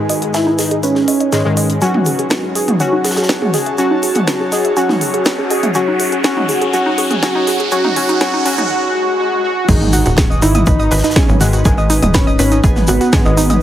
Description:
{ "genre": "melodic techno", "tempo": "122 BPM", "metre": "4/4", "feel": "straight", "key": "G# phrygian", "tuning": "A4 = 440 Hz", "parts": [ { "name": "woody wave-folded pluck", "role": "arpeggios", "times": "0.0-13.6 s", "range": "D#4 to D#6", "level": "-20 LUFS", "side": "right 1 dB", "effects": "chorus, sidechain pumping, tape echo" }, { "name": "synth brass stab", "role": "stabs", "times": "0.0-13.6 s", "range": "G#2 to F#4", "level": "-20 LUFS", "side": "left 2 dB", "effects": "chorus, sidechain pumping, tape echo" }, { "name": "airy breathy pad", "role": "texture", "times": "0.0-13.6 s", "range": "D#4 to A5", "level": "-24 LUFS", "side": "equal", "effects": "chorus, sidechain pumping" }, { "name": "techno drum kit", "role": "drums", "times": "0.1-13.6 s", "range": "crash cymbal, hi-hat, snare drum, toms", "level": "-18 LUFS", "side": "equal", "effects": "sidechain pumping on hats, sidechain pumping on toms, sidechain pumping on cymbals" }, { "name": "tight funk drum kit", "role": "drums", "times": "0.1-13.6 s", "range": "hi-hat, shaker, snare drum", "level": "-28 LUFS", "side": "equal", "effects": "high-pass filter on hats, high-pass filter on snare, high-pass filter on perc, high-pass filter on room" }, { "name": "wide unison lead", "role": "melody", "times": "0.3-13.5 s", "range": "B3 to G#4", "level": "-18 LUFS", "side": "equal", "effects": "wide subtle chorus, cassette tape, sidechain pumping, digital delay" }, { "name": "riser, swell and impact", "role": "sound effects", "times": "4.1-11.7 s", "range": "none", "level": "-26 LUFS", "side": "right 1 dB", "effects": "none" }, { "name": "tight sequencer bass", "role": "bass", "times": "9.7-13.6 s", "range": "D#1 to G#1", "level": "-17 LUFS", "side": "equal", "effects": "sidechain pumping" }, { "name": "electronic kick drum", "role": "drums", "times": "9.7-13.2 s", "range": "none", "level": "-14 LUFS", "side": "equal", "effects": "none" }, { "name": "tube shaker", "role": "percussion", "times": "9.7-13.6 s", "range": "none", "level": "-28 LUFS", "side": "right 2 dB", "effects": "none" } ], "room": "moderate huge ambient reverb, RT60 9.3 s", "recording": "heavily compressed radio sound, high-pass filter", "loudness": "-12 LUFS", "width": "side -11 dB against mid", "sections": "0.0-9.7 A section; 9.7-13.6 B section", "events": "build-up 0.0-9.7; filter sweep on synth pluck 0.0-9.7; filter sweep on analog synth lead 0.0-9.7; riser 4.1-8.7; swell 8.7-9.7; drop 9.7-13.6; impact 9.7-11.7", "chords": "0.0 G#m; 1.8 F#m; 5.8 C#sus4; 9.7 G#m", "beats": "0.34 0.83 1.32 | 1.82 2.31 2.80 3.29 | 3.78 4.28 4.77 5.26 | 5.75 6.24 6.74 7.23 | 7.72 8.21 8.70 9.19 | 9.69 10.18 10.67 11.16 | 11.65 12.14 12.64 13.13 | 13.62" }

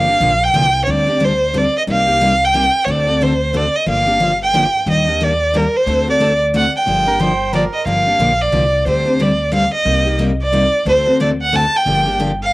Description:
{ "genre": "acoustic string swing (jazz manouche)", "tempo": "180 BPM", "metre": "3/4", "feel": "swing 60% on 8ths", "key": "G minor", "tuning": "A4 = 441 Hz", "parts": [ { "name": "rich violin", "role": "melody", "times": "0.0-12.5 s", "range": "Bb4 to A5", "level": "-14 LUFS", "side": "right 1 dB", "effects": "none" }, { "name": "picked steel-string acoustic guitar", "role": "accompaniment", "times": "0.0-12.3 s", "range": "C3 to A4", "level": "-19 LUFS", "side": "left 2 dB", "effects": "cassette tape" }, { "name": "upright bass", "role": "bass", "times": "0.0-12.5 s", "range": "G1 to Eb2", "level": "-22 LUFS", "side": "equal", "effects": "none" }, { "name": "breathy soprano saxophone", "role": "second line", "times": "7.1-7.9 s", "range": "Bb4 to C5", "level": "-23 LUFS", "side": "right 3 dB", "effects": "cassette tape" } ], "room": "light reverb, small room ambience", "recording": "home recording on cassette", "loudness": "-13 LUFS", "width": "side -20 dB against mid", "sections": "0.0-7.9 A section; 7.9-12.5 A section", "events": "none", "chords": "0.0 Gm7; 0.9 D7sus4; 1.9 Cm7; 2.9 D7; 3.9 Gm7; 4.9 Ebmaj7; 5.9 D7; 6.9 Gm7; 8.9 D7sus4; 9.9 Cm7; 10.9 D7; 11.9 Gm7", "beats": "0.20 0.53 | 0.87 1.20 1.53 | 1.87 2.20 2.54 | 2.87 3.20 3.53 | 3.87 4.20 4.53 | 4.87 5.20 5.53 | 5.86 6.20 6.53 | 6.86 7.20 7.53 | 7.86 8.20 8.53 | 8.86 9.20 9.53 | 9.86 10.20 10.53 | 10.86 11.20 11.53 | 11.86 12.20 12.53" }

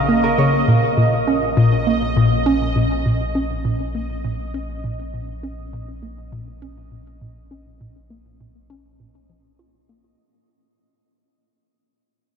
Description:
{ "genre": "ambient, sequencer-driven space music", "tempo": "101 BPM", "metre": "4/4", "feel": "straight", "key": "Bb minor", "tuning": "A4 = 440 Hz", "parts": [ { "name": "concert harp", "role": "arpeggios", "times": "0.0-2.4 s", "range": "Bb4 to Db6", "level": "-24 LUFS", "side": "equal", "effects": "auto-pan, ping-pong delay, shimmer reverb" }, { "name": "hollow square pluck", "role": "riff", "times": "0.0-10.2 s", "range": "Bb2 to F4", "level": "-18 LUFS", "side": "equal", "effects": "chorus, ping-pong delay" }, { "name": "warm sub bass", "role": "bass", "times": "0.0-10.2 s", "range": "Bb1", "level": "-30 LUFS", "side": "equal", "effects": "none" }, { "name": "bubbling stepped-filter texture", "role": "texture", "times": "0.0-10.2 s", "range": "Eb5", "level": "-26 LUFS", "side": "right 3 dB", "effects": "chorus, built-in reverb, shimmer reverb" } ], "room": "wet huge ambient reverb, RT60 8.1 s", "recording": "dark, warm production", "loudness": "-16 LUFS", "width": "side -7 dB against mid", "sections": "0.0-10.2 A section", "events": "fade-out 0.0-10.2; filter sweep on synth arpeggio sound 0.0-10.2", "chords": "0.0 Bbm", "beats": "0.08 | 0.68 1.27 1.87 2.46 | 3.06 3.65 4.24 4.84 | 5.43 6.03 6.62 7.21 | 7.81 8.40 8.99 9.59" }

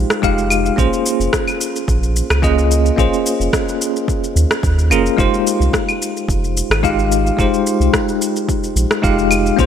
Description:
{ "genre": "sunset chillout", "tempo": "109 BPM", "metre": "4/4", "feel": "swing 53% on 16ths", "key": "F minor", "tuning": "A4 = 441 Hz", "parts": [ { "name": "bell-like tine electric piano", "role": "accompaniment", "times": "0.0-9.7 s", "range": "Ab3 to F5", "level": "-17 LUFS", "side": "left 1 dB", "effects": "medium stereo tremolo, auto-pan, ping-pong delay" }, { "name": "round analog bass", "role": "bass", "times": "0.0-9.7 s", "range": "F1 to Eb2", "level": "-17 LUFS", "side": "right 1 dB", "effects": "none" }, { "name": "electronic rim click, shaker and claves", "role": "drums", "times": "0.1-9.7 s", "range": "none", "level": "-21 LUFS", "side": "left 1 dB", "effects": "overdrive" }, { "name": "electronic kick drum", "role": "drums", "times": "0.2-9.7 s", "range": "none", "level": "-20 LUFS", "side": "right 1 dB", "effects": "overdrive" } ], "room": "moderate plate reverb, RT60 3.2 s", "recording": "bright 1980s-style digital production", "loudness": "-14 LUFS", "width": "side -9 dB against mid", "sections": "0.0-9.7 A section", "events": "none", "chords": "0.0 Fm9; 0.8 Bbm7; 5.2 Fm9", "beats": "0.23 | 0.78 1.33 1.88 2.43 | 2.98 3.53 4.08 4.63 | 5.18 5.74 6.29 6.84 | 7.39 7.94 8.49 9.04 | 9.59" }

